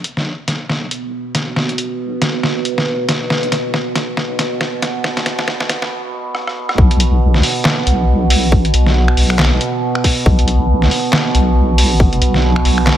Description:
deep dubstep; 138 BPM; 4/4; swing 58% on 16ths, half-time; A4 = 440 Hz
overtone-sweeping drone; sustained chords; 0.8-13.0 s; B2; -20 LUFS; right 3 dB; chorus, built-in reverb
deep soft wobble bass; bass; 0.0-13.0 s; A1 to D2; -14 LUFS; equal; chorus, high-pass filter
trip hop sampler-style drum kit; drums; 0.0-13.0 s; finger snaps, handclaps, hi-hat, rim click, snare drum; -18 LUFS; equal
electronic kick drum; drums; 6.8-12.1 s; -12 LUFS; equal
light reverb; high-pass filter; -13 LUFS; side -11 dB against mid
0.0-6.8 A section; 6.8-13.0 B section
build-up 0.0-6.8; drum fill 0.0-5.9, 6.3-6.8; filter sweep on synth drone 0.0-6.8; break 5.9-6.8; drop 6.8-13.0
0.0 Asus2; 6.8 N.C.
0.26 0.69 1.13 | 1.56 2.00 2.43 2.87 | 3.30 3.74 4.17 4.61 | 5.04 5.48 5.91 6.35 | 6.78 7.22 7.65 8.09 | 8.52 8.96 9.39 9.82 | 10.26 10.70 11.13 11.56 | 12.00 12.43 12.87

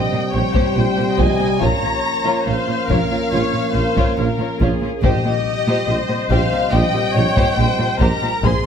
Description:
cinematic, epic orchestral film score; 70 BPM; 4/4; straight; A4 = 436 Hz
warm symphonic violin section; melody; 0.0-8.7 s; Eb5 to C6; -23 LUFS; left 3 dB
dark symphonic violin section; second line; 0.0-8.6 s; F4 to Db5; -25 LUFS; left 2 dB
rich symphonic viola section; accompaniment; 0.0-8.7 s; G4 to Eb5; -25 LUFS; left 1 dB
dark French horn section; sustained chords; 0.0-8.7 s; C3 to Eb5; -25 LUFS; left 7 dB
warm trombone section; sustained chords; 0.0-8.7 s; C3 to Bb3; -26 LUFS; right 4 dB
warm symphonic cello section; bass; 0.1-8.5 s; Bb2; -25 LUFS; right 2 dB
dark symphonic double bass section; bass; 0.3-8.5 s; Bb1; -24 LUFS; right 2 dB
warm tuba; bass; 0.3-8.5 s; Bb1; -26 LUFS; right 4 dB
taiko ensemble; drums; 0.5-8.7 s; -21 LUFS; left 1 dB
timpani; percussion; 5.0-6.3 s; Bb2; -26 LUFS; left 3 dB
moderate scoring stage reverb, RT60 1.7 s; close, detailed microphones; -15 LUFS; side -7 dB against mid
0.0-8.7 A section
0.0 Cm/Bb; 1.6 Bbm; 5.0 Cm/Bb
0.76 | 1.62 2.48 3.33 4.19 | 5.04 5.89 6.73 7.58 | 8.43

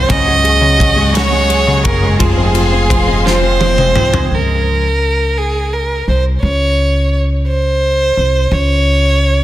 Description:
six-eight pop ballad; 57 BPM (dotted quarters); 6/8; straight; Bb minor; A4 = 440 Hz
warm violin; melody; 0.0-9.4 s; Ab4 to Eb5; -15 LUFS; right 2 dB; digital delay
dark baby grand piano; accompaniment; 0.0-4.3 s; Db3 to Bb4; -19 LUFS; left 3 dB
warm studio string section; sustained chords; 0.0-4.3 s; Ab4 to Db6; -20 LUFS; left 2 dB
twelve-string electric guitar; arpeggios; 0.0-4.9 s; F3 to Db4; -23 LUFS; right 6 dB; analog chorus
upright bass; bass; 0.0-9.4 s; F1 to Db2; -15 LUFS; equal
modern studio drum kit; drums; 0.1-4.3 s; kick drum, ride cymbal, snare drum, toms; -17 LUFS; equal
light reverb, small room ambience; dense, heavily limited modern master; -10 LUFS; side -14 dB against mid
0.0-4.3 A section; 4.3-9.4 B section
drum fill 3.3-4.3
0.1 Gbsus2/Db; 2.2 Fm; 4.3 Bbm9; 6.4 N.C.
| 0.10 1.15 | 2.21 3.26 | 4.31 5.36 | 6.42 7.47 | 8.53

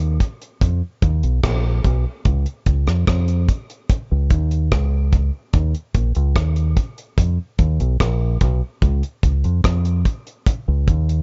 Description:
dub reggae; 73 BPM; 4/4; straight; A4 = 440 Hz
deep dub fingered electric bass; bass; 0.0-11.2 s; Bb1 to F2; -20 LUFS; equal
deep reggae drum kit; drums; 0.0-11.2 s; hi-hat, kick drum, rim click; -21 LUFS; equal
little or no reverb; nothing above 7.6 kHz; -20 LUFS; mono
0.0-11.2 A section
0.61 1.43 | 2.25 3.08 3.90 4.72 | 5.54 6.36 7.18 8.00 | 8.82 9.64 10.46

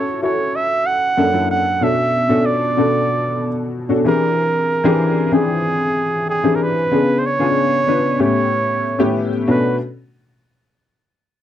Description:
pop; 94 BPM; 4/4; straight; B minor; A4 = 440 Hz
warm flugelhorn; melody; 0.0-9.8 s; G#4 to F#5; -18 LUFS; right 3 dB; slapback echo
warm baby grand piano; accompaniment; 0.0-9.8 s; F#2 to G5; -17 LUFS; left 2 dB; analog chorus
light reverb; dry, close 1970s-style studio recording; -15 LUFS; side -11 dB against mid
0.0-9.5 A section; 9.5-11.4 B section
0.0 F#m7; 1.2 F#7alt; 1.8 Bm9; 4.0 E7alt; 6.9 C#7b9; 8.2 A7; 9.5 Bm9
0.54 1.18 | 1.81 2.45 3.09 3.73 | 4.37 5.00 5.64 6.28 | 6.92 7.56 8.19 8.83 | 9.47

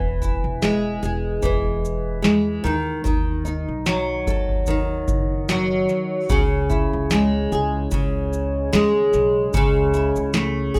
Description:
acoustic pop; 74 BPM; 4/4; swing 55% on 16ths; E major; A4 = 441 Hz
flamenco guitar; accompaniment; 0.0-10.8 s; C#3 to A4; -23 LUFS; equal; double-tracked, plate reverb
upright bass; bass; 0.0-10.8 s; E1 to E2; -29 LUFS; equal
booming analog drum machine; drums; 0.2-10.8 s; kick drum, shaker, snare drum; -26 LUFS; equal
moderate small room reverb, RT60 0.5 s; rough home demo mix; -21 LUFS; mono
0.0-10.8 A section
0.0 E; 2.6 B7; 6.3 C#m; 9.5 Amaj7/C#
0.63 1.44 2.25 | 3.06 3.87 4.67 5.48 | 6.29 7.10 7.91 8.72 | 9.53 10.34

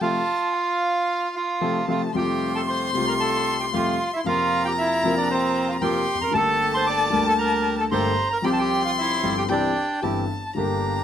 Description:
tango; 114 BPM; 4/4; rubato; F major; A4 = 440 Hz
bandoneon; melody; 0.0-10.0 s; C4 to D6; -24 LUFS; right 2 dB
dark violin; second line; 0.0-11.0 s; F5 to C6; -27 LUFS; left 2 dB
dark concert grand piano; accompaniment; 0.0-11.0 s; G1 to G4; -25 LUFS; left 3 dB
bandoneon; stabs; 0.0-11.0 s; F3 to Bb4; -32 LUFS; right 7 dB
moderate studio reverb, RT60 0.7 s; -20 LUFS; side -9 dB against mid
0.0-2.1 A section; 2.1-11.0 B section
band accent 0.0-2.1
0.0 F; 2.1 Fadd9; 4.3 Bbsus2/F; 6.3 Gmadd9; 8.4 Csus4; 9.5 C
| 0.01 0.54 1.07 1.61 | 2.15 2.68 3.21 3.73 | 4.25 4.78 5.30 5.82 | 6.33 6.86 7.38 7.90 | 8.43 8.96 9.49 10.02 | 10.56

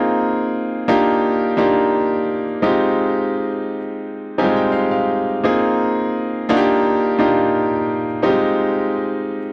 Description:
soul; 86 BPM; 4/4; straight; Eb major; A4 = 440 Hz
bright concert grand piano; solo; 0.0-9.5 s; G3 to Ab5; -18 LUFS; equal
small room ambience; dry, close 1970s-style studio recording; -18 LUFS; mono
0.0-9.5 A section
grand piano fill 4.0-5.4
0.0 Bb9sus4; 0.9 Ebmaj9; 2.6 Fm7; 5.4 Bb9sus4; 6.5 Ebmaj9; 8.2 Fm7
0.52 1.23 1.93 | 2.63 3.34 4.04 4.74 | 5.44 6.14 6.84 7.54 | 8.24 8.95

